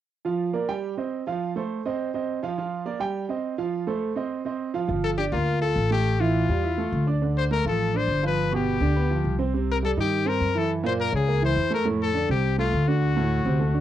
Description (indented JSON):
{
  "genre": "latin",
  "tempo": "207 BPM",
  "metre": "4/4",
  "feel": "straight",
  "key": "G minor",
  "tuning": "A4 = 440 Hz",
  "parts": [
    { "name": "warm concert grand piano", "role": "accompaniment", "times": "0.2-13.8 s", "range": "A2 to G5", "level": "-26 LUFS", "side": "right 5 dB", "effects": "none" },
    { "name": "upright bass", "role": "bass", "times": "4.9-13.8 s", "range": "G1 to G2", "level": "-25 LUFS", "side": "left 1 dB", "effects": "none" },
    { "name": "bright trumpet", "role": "melody", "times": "5.0-13.8 s", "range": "F4 to C5", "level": "-26 LUFS", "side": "left 6 dB", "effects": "cassette tape" }
  ],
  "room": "moderate small room reverb, RT60 0.5 s",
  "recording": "home recording on cassette",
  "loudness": "-22 LUFS",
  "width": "side -12 dB against mid",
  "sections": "0.2-4.9 A section; 4.9-13.8 B section",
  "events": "none",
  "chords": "0.2 Gm7; 0.8 Cm; 1.4 F; 2.0 Cm; 2.6 Gm7; 3.2 Cm; 3.7 F; 4.3 Cm; 4.9 Gm7; 6.1 A5; 7.2 Dm7; 8.4 G7; 9.5 Cm7; 10.7 F#9; 11.9 F6; 13.0 D7",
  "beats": "| 0.25 0.54 0.83 1.12 | 1.41 1.70 1.99 2.28 | 2.57 2.86 3.15 3.44 | 3.73 4.02 4.31 4.60 | 4.89 5.18 5.47 5.76 | 6.06 6.35 6.64 6.93 | 7.22 7.51 7.80 8.09 | 8.38 8.67 8.96 9.25 | 9.54 9.83 10.12 10.41 | 10.70 10.99 11.28 11.57 | 11.86 12.15 12.44 12.73 | 13.02 13.31 13.60"
}